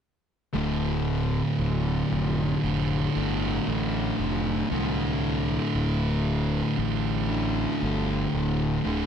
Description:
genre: metal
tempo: 58 BPM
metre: 4/4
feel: straight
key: D minor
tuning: A4 = 440 Hz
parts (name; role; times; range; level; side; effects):
- thick fuzz guitar; riff; 0.5-9.1 s; D2 to D3; -28 LUFS; left 8 dB; distortion
- thick fuzz guitar; riff; 0.5-9.1 s; D2 to D3; -28 LUFS; right 9 dB; distortion
- fuzz fingered electric bass; bass; 0.5-9.1 s; D1 to C2; -30 LUFS; equal; overdrive
room: little or no reverb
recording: dry, close 1970s-style studio recording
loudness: -24 LUFS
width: side -8 dB against mid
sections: 0.5-9.1 A section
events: none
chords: 0.5 Dm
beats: | 0.54 1.58 2.62 3.66 | 4.70 5.74 6.78 7.82 | 8.86

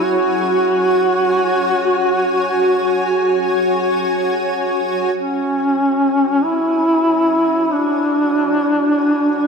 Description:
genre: dark ambient drone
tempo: free time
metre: none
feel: none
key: unclear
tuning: A4 = 440 Hz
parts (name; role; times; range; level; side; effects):
- mellow duduk; melody; 0.0-9.5 s; C#4 to F#4; -16 LUFS; equal; ping-pong delay
- granular cloud pad; sustained chords; 0.0-9.5 s; F#4 to G#5; -19 LUFS; equal; built-in reverb
room: wet cathedral reverb, RT60 6.3 s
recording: in a vast, echoing space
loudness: -14 LUFS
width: side -5 dB against mid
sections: 0.0-5.2 A section; 5.2-9.5 B section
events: none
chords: 0.0 F#5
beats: free time

